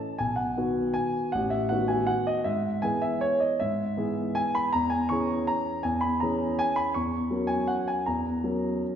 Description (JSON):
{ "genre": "classical, piano waltz", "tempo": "160 BPM", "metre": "3/4", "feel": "uneven beats, rubato", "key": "E major", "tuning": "A4 = 440 Hz", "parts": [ { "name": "warm grand piano", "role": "solo", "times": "0.0-9.0 s", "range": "A1 to C#6", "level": "-25 LUFS", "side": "equal", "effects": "none" } ], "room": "wet scoring stage reverb, RT60 1.5 s", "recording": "recorded in a church or concert hall, nothing above 7.5 kHz", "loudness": "-25 LUFS", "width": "side -8 dB against mid", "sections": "0.0-9.0 A section", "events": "none", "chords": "0.2 B; 1.3 B7/A; 2.5 E/G#; 4.7 C#m/E; 7.0 F#7/E" }